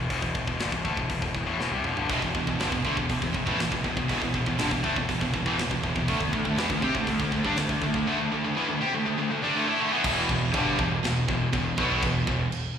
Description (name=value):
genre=heavy metal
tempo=121 BPM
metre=4/4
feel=straight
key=E minor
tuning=A4 = 441 Hz
part: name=scooped high-gain guitar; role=riff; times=0.0-12.5 s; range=E2 to G4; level=-28 LUFS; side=left 5 dB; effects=distortion, slapback echo
part: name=growling picked electric bass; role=bass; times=0.0-12.5 s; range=E1 to C3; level=-32 LUFS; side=right 1 dB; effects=overdrive
part: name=tight metal drum kit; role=drums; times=0.1-12.6 s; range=crash cymbal, hi-hat, kick drum, snare drum, toms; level=-32 LUFS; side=right 1 dB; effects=none
part: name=distorted electric guitar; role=riff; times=2.1-12.5 s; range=E2 to G4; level=-32 LUFS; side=right 2 dB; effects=distortion, slapback echo
part: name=heavy high-gain guitar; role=riff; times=2.1-12.5 s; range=E2 to G4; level=-30 LUFS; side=right 13 dB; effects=distortion, slapback echo
room=light reverb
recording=live gig heard through the venue's PA, recital hall reverb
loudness=-24 LUFS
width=side -8 dB against mid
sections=0.0-10.0 A section; 10.0-12.8 B section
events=drum fill 1.6-2.1; half time 10.0-12.8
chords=0.0 Em; 6.1 D5; 10.0 Em